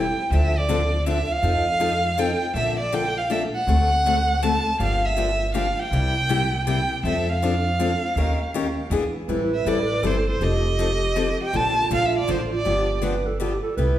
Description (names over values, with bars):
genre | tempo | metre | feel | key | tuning
acoustic string swing (jazz manouche) | 160 BPM | 3/4 | swing 63% on 8ths | D minor, A minor from 9.3 s | A4 = 440 Hz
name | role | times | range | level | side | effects
warm violin | melody | 0.0-13.0 s | C5 to A5 | -24 LUFS | right 1 dB | none
breathy clarinet | second line | 0.0-0.2, 9.3-14.0 s | F4 to B4 | -27 LUFS | right 4 dB | none
picked steel-string acoustic guitar | accompaniment | 0.0-14.0 s | C3 to Bb4 | -26 LUFS | left 4 dB | none
upright bass | bass | 0.0-14.0 s | F1 to F2 | -25 LUFS | equal | none
room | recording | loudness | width
wet recital hall reverb, RT60 1.4 s | recorded in a church or concert hall | -20 LUFS | side -12 dB against mid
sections
0.3-9.3 A section; 9.3-14.0 B section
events
none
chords
0.3 Dm7; 1.4 F7; 2.6 Bbmaj7; 3.7 D7; 4.8 Gm7; 5.9 C7; 7.0 F6; 8.2 Eb9; 8.9 E7; 9.3 Am9; 10.4 F7; 11.5 Bbmaj7; 12.7 G7